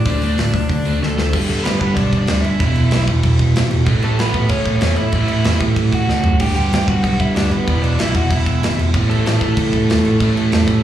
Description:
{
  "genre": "punk rock",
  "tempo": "190 BPM",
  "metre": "4/4",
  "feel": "straight",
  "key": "A major",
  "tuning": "A4 = 440 Hz",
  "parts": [
    { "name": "biting overdriven guitar", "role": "melody", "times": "0.0-10.8 s", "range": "A3 to G5", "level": "-23 LUFS", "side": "right 1 dB", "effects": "slapback echo, digital delay" },
    { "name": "crunchy overdriven guitar", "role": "riff", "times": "0.0-10.8 s", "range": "E2 to D4", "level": "-19 LUFS", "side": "right 1 dB", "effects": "slapback echo" },
    { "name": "overdriven picked electric bass", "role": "bass", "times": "0.0-10.8 s", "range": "E1 to D3", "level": "-18 LUFS", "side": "right 1 dB", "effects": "none" },
    { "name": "big rock drum kit", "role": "drums", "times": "0.1-10.8 s", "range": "crash cymbal, hi-hat, kick drum, snare drum, toms", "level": "-21 LUFS", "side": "equal", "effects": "none" }
  ],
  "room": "small room ambience",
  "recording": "live gig heard through the venue's PA, club reverb, studio reverb",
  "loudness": "-14 LUFS",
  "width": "side -11 dB against mid",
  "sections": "0.0-1.3 A section; 1.3-10.8 B section",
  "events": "drum fill 1.0-1.3, 6.1-6.4",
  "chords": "0.1 D5; 1.3 G; 2.6 E5; 3.9 A; 6.4 G; 7.7 E5; 8.9 A5"
}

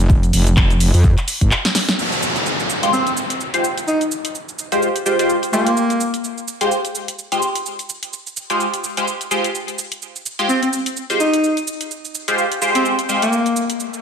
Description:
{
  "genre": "bass house",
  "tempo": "127 BPM",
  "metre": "4/4",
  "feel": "swing 57% on 16ths",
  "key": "F minor",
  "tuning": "A4 = 440 Hz",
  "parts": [
    { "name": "metallic wobble bass", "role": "bass", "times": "0.0-1.5 s", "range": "F1 to F2", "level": "-14 LUFS", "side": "equal", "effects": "chorus, tube saturation, sidechain pumping" },
    { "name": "house drum kit", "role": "drums", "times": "0.0-14.0 s", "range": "cabasa, handclaps, hi-hat, snare drum", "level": "-24 LUFS", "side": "right 1 dB", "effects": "none" },
    { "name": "electronic kick drum", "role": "drums", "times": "0.1-1.5 s", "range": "none", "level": "-15 LUFS", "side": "equal", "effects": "none" },
    { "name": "downlifter and riser", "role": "sound effects", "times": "2.0-5.8, 13.6-14.0 s", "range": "none", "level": "-23 LUFS", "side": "equal", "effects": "none" },
    { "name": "band-passed chord stab", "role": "stabs", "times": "2.8-13.3 s", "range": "Ab3 to C5", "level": "-19 LUFS", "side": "equal", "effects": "phaser, analog chorus, sidechain pumping, ping-pong delay" },
    { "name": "breathy alto saxophone", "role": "melody", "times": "2.9-6.2, 10.5-13.7 s", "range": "Bb3 to Eb4", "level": "-20 LUFS", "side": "equal", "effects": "ping-pong delay" }
  ],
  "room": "wet plate reverb, RT60 1.0 s",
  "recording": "dreamy mix soaked in reverb",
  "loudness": "-16 LUFS",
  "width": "side -7 dB against mid",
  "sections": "0.0-2.0 A section; 2.0-14.0 B section",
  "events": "drop 0.0-2.0; drum fill 1.6-2.0; riser 13.6-14.0",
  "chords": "0.0 N.C.; 2.0 Fmadd9"
}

